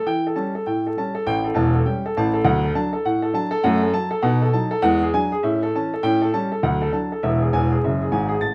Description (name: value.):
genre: jazz, stride piano.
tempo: 201 BPM.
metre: 4/4.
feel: swing 62% on 8ths.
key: D major.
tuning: A4 = 438 Hz.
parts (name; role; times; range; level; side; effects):
warm upright piano; solo; 0.0-8.5 s; E1 to A6; -21 LUFS; equal; none.
room: wet club reverb, RT60 0.5 s.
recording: heard from further back in the room, vinyl crackle.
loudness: -21 LUFS.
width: mono.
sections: 0.0-8.4 A section.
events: upright piano fill 7.5-8.4.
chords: 0.1 A7/E; 1.3 A7; 2.4 D; 3.6 F#m; 4.2 B7; 4.8 E9; 5.4 A; 6.0 A7; 6.6 D; 7.2 E.